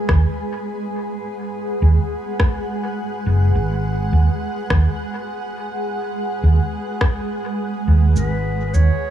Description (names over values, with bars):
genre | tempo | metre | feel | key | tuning
ambient dub | 104 BPM | 4/4 | swing 55% on 16ths | G# minor | A4 = 439 Hz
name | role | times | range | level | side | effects
granular cloud pad | sustained chords | 0.0-9.1 s | G#3 to F#5 | -25 LUFS | right 1 dB | built-in reverb
hollow-body short-scale fingered electric bass | bass | 0.1-8.9 s | F#1 to D#2 | -15 LUFS | right 1 dB | tube saturation
electronic kick drum | drums | 0.1-7.1 s | none | -18 LUFS | equal | none
electronic rim click and cabasa | drums | 0.1-8.9 s | none | -27 LUFS | left 1 dB | dub echo
warm clarinet | melody | 8.2-9.1 s | B4 to C#5 | -26 LUFS | equal | dub echo
room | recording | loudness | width
light reverb, digital ambience | small room ambience | -18 LUFS | side -10 dB against mid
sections
0.0-9.1 A section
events
none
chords
0.0 G#m7